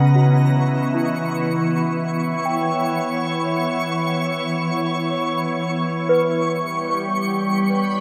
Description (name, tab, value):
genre	ambient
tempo	free time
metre	none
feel	none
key	unclear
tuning	A4 = 440 Hz
part	soft additive organ-like pad	sustained chords	0.0-8.0 s	E3 to D#5	-22 LUFS	equal	ensemble chorus, built-in reverb
part	small celesta	arpeggios	0.0-8.0 s	D#4 to G5	-28 LUFS	equal	delay
part	organ-like drone	drone	0.0-8.0 s	B3	-30 LUFS	equal	ensemble chorus, built-in reverb
part	twinkling granular texture	texture	0.0-8.0 s	C#6	-30 LUFS	equal	built-in reverb
room	wet lush hall reverb, RT60 2.9 s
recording	none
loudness	-21 LUFS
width	mono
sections	0.0-8.0 A section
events	none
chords	0.0 Em6; 6.4 G